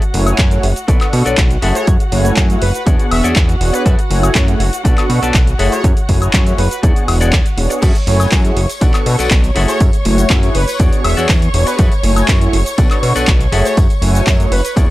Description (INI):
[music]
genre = filtered disco house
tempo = 121 BPM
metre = 4/4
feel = straight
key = F# minor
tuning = A4 = 440 Hz
[part]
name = dark chamber string section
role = sustained chords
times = 0.0-14.9 s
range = F#4 to C#6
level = -25 LUFS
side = equal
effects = vintage 12-bit sampler grit, sidechain pumping
[part]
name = semi-hollow electric guitar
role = riff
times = 0.0-14.9 s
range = G#4 to A5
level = -22 LUFS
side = left 3 dB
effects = sidechain pumping
[part]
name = punchy analog drum machine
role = drums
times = 0.0-14.9 s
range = crash cymbal, handclaps, hi-hat, shaker, woodblock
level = -20 LUFS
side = equal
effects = sidechain pumping on hats, sidechain pumping on perc, sidechain pumping on cymbals
[part]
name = mellow synth brass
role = accompaniment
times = 0.1-14.9 s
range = A3 to C#6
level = -20 LUFS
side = equal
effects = chorus, phaser, vintage 12-bit sampler grit, sidechain pumping
[part]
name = fat analog bass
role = bass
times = 0.1-14.9 s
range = E1 to B2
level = -15 LUFS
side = equal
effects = sidechain pumping
[part]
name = electronic kick drum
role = drums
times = 0.4-14.9 s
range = none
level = -13 LUFS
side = equal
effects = none
[part]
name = analog synth brass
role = melody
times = 1.8-14.7 s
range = B4 to E5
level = -24 LUFS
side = equal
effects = chorus, sidechain pumping
[part]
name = tambourine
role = percussion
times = 7.8-14.9 s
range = none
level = -32 LUFS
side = left 5 dB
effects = sidechain pumping on perc
[sound]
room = digital ambience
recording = dry, gritty hardware recording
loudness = -11 LUFS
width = side -17 dB against mid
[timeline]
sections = 0.0-14.9 A section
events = none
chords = 0.0 F#m9; 0.9 Bm7; 1.6 F#m9; 2.9 E13; 3.9 F#m9; 4.8 Bm7; 5.6 F#m9; 6.8 E13; 7.8 F#m9; 8.8 Bm7; 9.6 F#m9; 10.8 E13; 11.8 F#m9; 12.8 Bm7; 13.5 F#m9